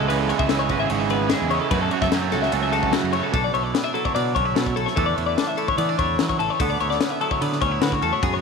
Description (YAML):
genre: math rock and midwest emo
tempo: 148 BPM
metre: 4/4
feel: straight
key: unclear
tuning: A4 = 437 Hz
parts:
  - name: twangy electric guitar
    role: accompaniment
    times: 0.0-8.4 s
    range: F#2 to B4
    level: -26 LUFS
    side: right 12 dB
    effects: analog chorus
  - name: twelve-string electric guitar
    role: arpeggios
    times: 0.0-8.4 s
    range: F#4 to E5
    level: -24 LUFS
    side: left 11 dB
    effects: none
  - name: overdriven semi-hollow guitar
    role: riff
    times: 0.0-3.3 s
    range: F#2 to C#4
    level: -25 LUFS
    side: right 13 dB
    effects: spring reverb
  - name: growling fingered electric bass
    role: bass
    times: 0.0-8.4 s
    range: G#1 to E3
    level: -27 LUFS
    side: right 1 dB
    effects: overdrive
  - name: crisp fusion drum kit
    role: drums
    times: 0.1-8.3 s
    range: kick drum, ride cymbal, snare drum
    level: -26 LUFS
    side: left 4 dB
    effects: none
room: light reverb, studio reverb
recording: 1960s-style stereo with parts hard left and right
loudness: -19 LUFS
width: side -5 dB against mid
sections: 0.0-3.3 A section; 3.3-8.4 B section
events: none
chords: 0.0 C#m7; 1.7 F#m7; 3.3 Bm11; 5.0 E7sus4; 6.6 D69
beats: | 0.09 0.50 0.90 1.31 | 1.72 2.12 2.53 2.94 | 3.34 3.75 4.16 4.57 | 4.97 5.38 5.79 6.20 | 6.60 7.01 7.42 7.82 | 8.23